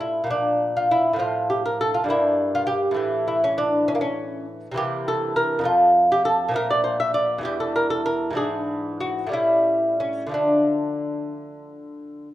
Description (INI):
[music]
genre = classical, baroque-style dance for lute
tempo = 58-69 BPM (dotted quarters)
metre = 6/8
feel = rubato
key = D minor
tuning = A4 = 442 Hz
[part]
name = lute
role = solo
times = 0.0-12.3 s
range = E2 to E5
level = -20 LUFS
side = equal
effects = none
[sound]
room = moderate recital hall reverb, RT60 1.4 s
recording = minimal, uncompressed stereo recording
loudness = -19 LUFS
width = side -14 dB against mid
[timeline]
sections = 0.0-12.3 A section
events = none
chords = 0.3 Bb; 1.2 F/A; 2.1 Edim/G; 3.0 A5; 4.8 C7; 5.7 F; 6.6 Bb5; 7.5 Edim; 8.4 E7/G#; 9.3 A7; 10.3 Dm